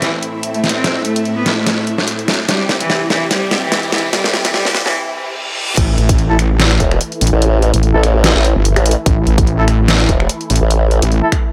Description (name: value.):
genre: heavy wobble dubstep.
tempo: 146 BPM.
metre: 4/4.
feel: swing 55% on 16ths, half-time.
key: A minor.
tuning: A4 = 440 Hz.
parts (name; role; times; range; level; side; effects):
clear cello; melody; 0.0-4.9 s; E3 to C4; -22 LUFS; equal; dub echo.
supersaw chords; sustained chords; 0.0-11.5 s; A2 to G5; -25 LUFS; equal; phaser, sidechain pumping, low-pass filter.
dubstep drum kit; drums; 0.0-11.4 s; crash cymbal, finger snaps, hi-hat, snare drum; -19 LUFS; equal; none.
riser and reverse cymbal; sound effects; 1.6-5.8 s; none; -28 LUFS; equal; none.
wobble bass; bass; 5.8-11.2 s; G1 to A1; -15 LUFS; equal; chorus, overdrive.
electronic kick drum; drums; 5.8-11.4 s; none; -18 LUFS; equal; none.
warm brass ensemble; stabs; 6.3-11.3 s; A3 to A4; -22 LUFS; equal; dub echo.
formant-sweep wobble bass; bass; 6.8-11.0 s; E1 to A1; -15 LUFS; equal; chorus, overdrive.
room: light reverb.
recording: high-pass filter.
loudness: -14 LUFS.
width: mono.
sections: 0.0-5.8 A section; 5.8-11.5 B section.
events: build-up 0.0-5.8; drum fill 0.0-5.0; filter sweep 0.0-5.8; break 5.0-5.8; reverse cymbal 5.0-5.8; drop 5.8-11.5.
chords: 0.0 Am; 2.5 C; 5.8 A5.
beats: 0.02 0.43 | 0.84 1.25 1.66 2.08 | 2.49 2.90 3.31 3.72 | 4.13 4.54 4.95 5.36 | 5.77 6.18 6.60 7.01 | 7.42 7.83 8.24 8.65 | 9.06 9.47 9.88 10.29 | 10.71 11.12.